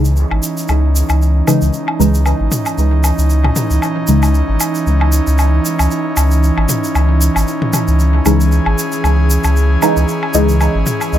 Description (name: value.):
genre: dub techno.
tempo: 115 BPM.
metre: 4/4.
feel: swing 55% on 16ths.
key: C# minor.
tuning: A4 = 440 Hz.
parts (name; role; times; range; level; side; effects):
airy breathy pad; sustained chords; 0.0-11.2 s; E3 to G#4; -18 LUFS; right 2 dB; chorus.
deep mellow chord stab; stabs; 0.0-4.3, 8.3-10.6 s; C#3 to D#4; -17 LUFS; equal; chorus, phaser, dub echo.
pure sine sub bass; bass; 0.0-11.2 s; G#1 to C#2; -12 LUFS; equal; none.
tube shaker; percussion; 0.0-11.2 s; none; -23 LUFS; right 2 dB; none.
electronic woodblock and toms; percussion; 0.3-11.1 s; none; -22 LUFS; left 1 dB; dub echo.
room: light reverb.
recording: echo-heavy mix.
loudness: -11 LUFS.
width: side -11 dB against mid.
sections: 0.0-11.2 A section.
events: none.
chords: 0.0 C#madd9.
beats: 0.17 0.69 1.21 | 1.74 2.26 2.78 3.30 | 3.82 4.34 4.87 5.39 | 5.91 6.43 6.95 7.47 | 8.00 8.52 9.04 9.56 | 10.08 10.61 11.13.